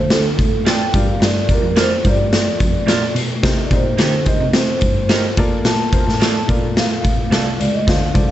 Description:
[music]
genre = uptempo 1960s-style soul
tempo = 108 BPM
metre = 4/4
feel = straight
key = unclear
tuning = A4 = 440 Hz
[part]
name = vibraphone with soft mallets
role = melody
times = 0.0-8.3 s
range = A4 to A5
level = -22 LUFS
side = equal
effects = plate reverb
[part]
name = warm upright piano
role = accompaniment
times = 0.0-8.3 s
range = G2 to F5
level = -26 LUFS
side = left 2 dB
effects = plate reverb
[part]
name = warm cello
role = bass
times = 0.0-8.3 s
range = C2 to C4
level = -21 LUFS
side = equal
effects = none
[part]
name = raw garage drum kit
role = drums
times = 0.1-8.3 s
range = hi-hat, kick drum, snare drum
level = -16 LUFS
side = equal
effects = none
[part]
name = electric guitar through a small old amp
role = stabs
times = 0.7-7.5 s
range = F3 to Bb4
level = -24 LUFS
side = right 7 dB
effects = plate reverb
[sound]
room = light reverb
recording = nothing above 8.0 kHz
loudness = -14 LUFS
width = side -12 dB against mid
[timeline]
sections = 0.0-8.3 A section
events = none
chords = 0.0 Dm7; 0.9 Gm7; 3.4 Cm7; 5.4 Bbmaj7

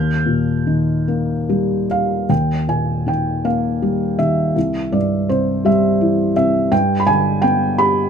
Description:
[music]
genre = classical, lyrical solo piano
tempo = 48-56 BPM (dotted quarters)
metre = 6/8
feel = rubato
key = Eb major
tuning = A4 = 443 Hz
[part]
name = felt-muted upright piano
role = solo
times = 0.0-8.1 s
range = C2 to G6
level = -15 LUFS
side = equal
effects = none
[sound]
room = light reverb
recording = none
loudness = -15 LUFS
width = side -7 dB against mid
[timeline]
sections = 0.0-2.3 A section; 2.3-8.1 A section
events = none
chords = 0.0 Eb; 4.6 C; 6.7 G

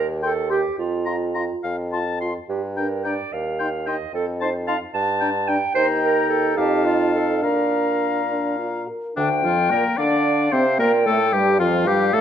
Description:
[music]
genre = quick classical-period movement for wind quintet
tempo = 69-75 BPM (dotted quarters)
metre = 6/8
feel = rubato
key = Bb major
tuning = A4 = 441 Hz
[part]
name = warm clarinet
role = accompaniment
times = 0.0-12.2 s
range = D4 to A5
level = -23 LUFS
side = right 5 dB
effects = none
[part]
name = mellow bassoon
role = bass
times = 0.0-12.2 s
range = D2 to D3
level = -25 LUFS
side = right 1 dB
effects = none
[part]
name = mellow concert flute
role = melody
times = 0.2-12.2 s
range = F5 to C6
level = -26 LUFS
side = left 7 dB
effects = none
[part]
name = warm oboe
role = second line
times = 0.2-12.2 s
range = D4 to C6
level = -26 LUFS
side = left 4 dB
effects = none
[part]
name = warm French horn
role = accompaniment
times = 0.2-12.2 s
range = D3 to Bb4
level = -26 LUFS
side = left 1 dB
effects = none
[sound]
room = moderate recital hall reverb, RT60 1.4 s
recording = none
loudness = -19 LUFS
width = side -9 dB against mid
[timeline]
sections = 0.0-9.2 A section; 9.2-12.2 B section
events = none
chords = 0.0 Cm/Eb (rootless); 0.8 Fsus4; 2.5 Gm; 3.3 Eb; 4.1 F7; 4.9 G5; 5.7 Eb6; 6.6 F7; 7.4 Bb; 9.2 Bb/D; 10.8 Bb5

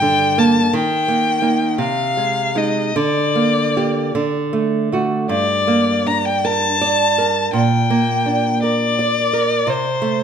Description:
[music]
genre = romantic duo for violin and classical guitar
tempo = 49-59 BPM (dotted quarters)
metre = 6/8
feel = rubato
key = G minor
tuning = A4 = 440 Hz
[part]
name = warm violin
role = melody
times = 0.0-10.2 s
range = C5 to Bb5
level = -18 LUFS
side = left 4 dB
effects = none
[part]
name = nylon-string guitar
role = accompaniment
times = 0.0-10.2 s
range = G2 to D5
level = -18 LUFS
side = right 3 dB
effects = none
[sound]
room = moderate recital hall reverb, RT60 1.4 s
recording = none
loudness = -15 LUFS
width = side -7 dB against mid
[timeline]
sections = 0.0-5.3 A section; 5.3-10.2 B section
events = none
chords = 0.0 Gm; 0.7 Eb; 1.8 Ab/C; 3.0 Gm/D; 4.2 D; 5.3 Gm; 7.5 Gm/Bb; 9.7 Am/C

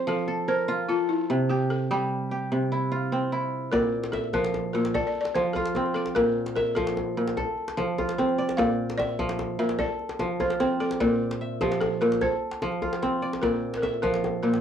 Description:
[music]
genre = west african traditional, West African string and xylophone music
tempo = 99 BPM (dotted quarters)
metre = 12/8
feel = straight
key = F major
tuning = A4 = 441 Hz
[part]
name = kora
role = arpeggios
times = 0.0-14.6 s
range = Bb2 to E5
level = -26 LUFS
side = right 1 dB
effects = none
[part]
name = balafon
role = melody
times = 0.1-14.6 s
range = E4 to F5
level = -28 LUFS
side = left 1 dB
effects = cassette tape
[part]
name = djembe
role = percussion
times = 3.7-14.6 s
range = none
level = -32 LUFS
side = left 3 dB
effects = none
[sound]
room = wet booth ambience, RT60 0.3 s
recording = home recording on cassette, small room ambience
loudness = -24 LUFS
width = side -8 dB against mid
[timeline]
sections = 0.0-3.7 A section; 3.7-14.6 B section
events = none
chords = 0.0 F; 1.3 C; 3.7 Bb; 4.9 F; 6.2 Bb; 7.4 F; 8.6 Bb; 9.8 F; 11.0 Bb; 12.2 F; 13.4 Bb

